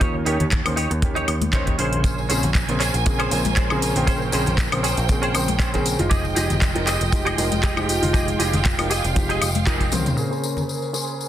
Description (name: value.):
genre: nu-disco, nu disco.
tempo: 118 BPM.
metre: 4/4.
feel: swing 54% on 16ths.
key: unclear.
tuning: A4 = 441 Hz.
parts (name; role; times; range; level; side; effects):
warm grand piano; accompaniment; 0.0-11.3 s; Db3 to G5; -26 LUFS; equal; dub echo.
direct-recorded clean electric guitar; riff; 0.0-11.1 s; Db4 to Eb5; -28 LUFS; right 1 dB; ensemble chorus, low-pass filter, dub echo.
picked electric bass; bass; 0.0-10.2 s; F1 to Eb2; -25 LUFS; equal; none.
house drum kit; drums; 0.0-10.2 s; handclaps, hi-hat, toms, woodblock; -26 LUFS; equal; none.
kick drum; drums; 0.0-9.9 s; none; -23 LUFS; equal; none.
congas and tambourine; percussion; 0.4-11.3 s; none; -29 LUFS; left 3 dB; none.
warm studio string section; sustained chords; 2.0-11.3 s; Ab3 to Ab5; -28 LUFS; right 2 dB; sidechain pumping, low-pass filter.
room: light reverb, studio ambience.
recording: dense, heavily limited modern master.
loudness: -18 LUFS.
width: side -11 dB against mid.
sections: 0.0-10.2 A section; 10.2-11.3 B section.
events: band accent 9.7; drum fill 9.9; filter sweep on string section 10.2-11.3.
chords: 0.0 Eb7; 1.8 Fm9; 10.2 Bbm9.